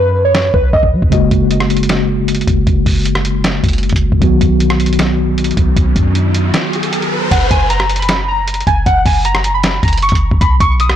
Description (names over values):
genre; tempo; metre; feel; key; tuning
hip hop, trap; 155 BPM; 4/4; half-time; F# major; A4 = 441 Hz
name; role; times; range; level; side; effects
warbly lo-fi synth keys; melody; 0.0-0.9, 7.3-11.0 s; B4 to D#6; -15 LUFS; right 1 dB; chorus, low-pass filter, ping-pong delay
clean 808-style bass; bass; 0.0-11.0 s; F#1 to F#3; -16 LUFS; equal; none
lo-fi sampler-style drum kit; drums; 0.3-11.0 s; crash cymbal, hi-hat, kick drum, rim click, snare drum; -15 LUFS; equal; none
mellow tine electric piano; accompaniment; 1.1-7.3 s; C#3 to F#4; -15 LUFS; left 1 dB; medium stereo tremolo, low-pass filter
riser; sound effects; 5.2-7.3 s; none; -21 LUFS; right 2 dB; none
room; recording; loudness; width
digital ambience; blown-out, overdriven recording, overdrive; -11 LUFS; side -10 dB against mid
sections
0.0-7.3 A section; 7.3-11.0 B section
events
break 0.0-1.1, 6.5-7.3; riser 5.2-7.3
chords
0.0 B5; 1.1 F#add9; 4.2 B; 7.3 F#; 10.4 B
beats
0.35 0.73 | 1.12 1.51 1.89 2.28 | 2.67 3.06 3.44 3.83 | 4.22 4.60 4.99 5.38 | 5.76 6.15 6.54 6.93 | 7.31 7.70 8.09 8.47 | 8.86 9.25 9.64 10.02 | 10.41 10.80